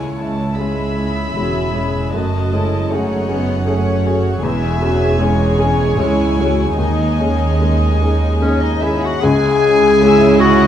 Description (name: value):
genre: cinematic, emotional film score for orchestra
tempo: 77 BPM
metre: 3/4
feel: rubato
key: C# minor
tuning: A4 = 441 Hz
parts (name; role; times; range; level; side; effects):
- rich studio violin section; second line; 0.0-10.7 s; C#5 to B5; -24 LUFS; left 3 dB; none
- felt-muted upright piano; accompaniment; 0.0-10.7 s; C#2 to G#4; -20 LUFS; left 3 dB; none
- rich studio viola section; accompaniment; 0.0-10.7 s; F#3 to G#4; -22 LUFS; right 1 dB; none
- warm studio cello section; bass; 0.0-10.7 s; C#2 to C#3; -21 LUFS; right 3 dB; none
- warm studio double bass section; bass; 0.0-10.7 s; E1 to D#2; -20 LUFS; right 3 dB; none
- rich studio violin section; melody; 8.4-10.7 s; C#5 to G#5; -20 LUFS; left 6 dB; none
- clear clarinet; second line; 8.4-10.7 s; C#4 to G#4; -13 LUFS; left 4 dB; none
room: moderate scoring stage reverb, RT60 1.9 s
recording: dark, warm production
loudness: -13 LUFS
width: side -10 dB against mid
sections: 0.0-9.2 A section; 9.2-10.7 B section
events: none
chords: 0.0 C#m; 2.1 F#madd9; 4.4 C#m/E; 6.8 G#sus4/D#; 9.2 C#m